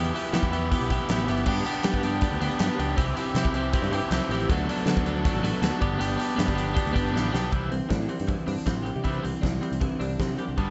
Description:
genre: indie rock.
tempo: 158 BPM.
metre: 4/4.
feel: straight.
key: unclear.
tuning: A4 = 440 Hz.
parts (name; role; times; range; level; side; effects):
raw garage guitar; riff; 0.0-10.7 s; E3 to G4; -33 LUFS; equal; overdrive.
twelve-string electric guitar; riff; 0.0-10.7 s; E3 to A4; -32 LUFS; equal; analog chorus.
picked electric bass; bass; 0.0-10.7 s; G1 to G3; -32 LUFS; equal; none.
big rock drum kit; drums; 0.2-10.7 s; crash cymbal, hi-hat, kick drum, snare drum; -31 LUFS; equal; none.
room: light reverb.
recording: dark, warm production, nothing above 7.9 kHz.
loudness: -26 LUFS.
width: mono.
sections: 0.0-7.5 A section; 7.5-10.7 B section.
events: drum fill 7.1-7.5.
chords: 0.0 Em; 1.5 G; 3.0 C; 4.5 D6; 5.8 G; 7.5 Cadd9.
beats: 0.33 0.71 1.09 | 1.47 1.85 2.23 2.60 | 2.98 3.36 3.74 4.12 | 4.49 4.87 5.25 5.63 | 6.01 6.39 6.76 7.14 | 7.52 7.91 8.29 8.67 | 9.05 9.43 9.81 10.19 | 10.57.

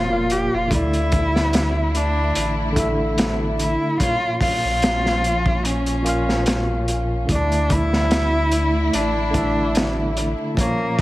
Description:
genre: trip hop.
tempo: 73 BPM.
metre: 4/4.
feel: swing 54% on 16ths.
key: D harmonic minor.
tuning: A4 = 439 Hz.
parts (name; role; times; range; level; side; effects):
warm cello; melody; 0.0-11.0 s; Bb3 to G4; -23 LUFS; equal; tape echo.
bright tine electric piano; accompaniment; 0.0-11.0 s; Bb2 to F5; -24 LUFS; equal; harmonic tremolo, vintage 12-bit sampler grit.
warm sub bass; bass; 0.0-10.3 s; F1 to D2; -24 LUFS; equal; none.
crunchy breakbeat drum kit; drums; 0.3-11.0 s; hi-hat, kick drum, snare drum; -23 LUFS; equal; none.
rich studio string section; sustained chords; 0.7-11.0 s; D3 to E4; -28 LUFS; equal; none.
room: light reverb, small room ambience.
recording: vinyl crackle.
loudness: -18 LUFS.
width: side -17 dB against mid.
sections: 0.0-11.0 A section.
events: none.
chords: 0.0 Bbm; 0.7 Dsus2; 4.0 Bbm; 7.3 Dsus2.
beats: | 0.71 1.53 2.35 3.18 | 4.00 4.82 5.64 6.46 | 7.29 8.11 8.93 9.75 | 10.57.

